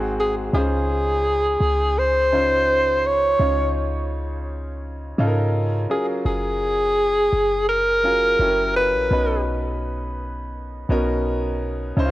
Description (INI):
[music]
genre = contemporary R&B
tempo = 84 BPM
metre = 4/4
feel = straight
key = Db major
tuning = A4 = 440 Hz
[part]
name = clear concert grand piano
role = accompaniment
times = 0.0-12.1 s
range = Ab2 to Db5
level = -26 LUFS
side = equal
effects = cassette tape
[part]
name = clean 808-style bass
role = bass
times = 0.0-12.1 s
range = Gb1 to Ab2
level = -25 LUFS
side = equal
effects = none
[part]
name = breathy alto saxophone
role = melody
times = 0.2-9.4 s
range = Ab4 to Db5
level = -19 LUFS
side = equal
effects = cassette tape, analog delay
[sound]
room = light reverb, small room ambience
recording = home recording on cassette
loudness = -18 LUFS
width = side -16 dB against mid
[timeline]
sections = 0.5-12.1 A section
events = none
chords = 0.0 Ab9; 0.5 Dbmaj9; 5.9 Gbmaj9; 8.4 Gb7b9; 9.1 Cbmaj9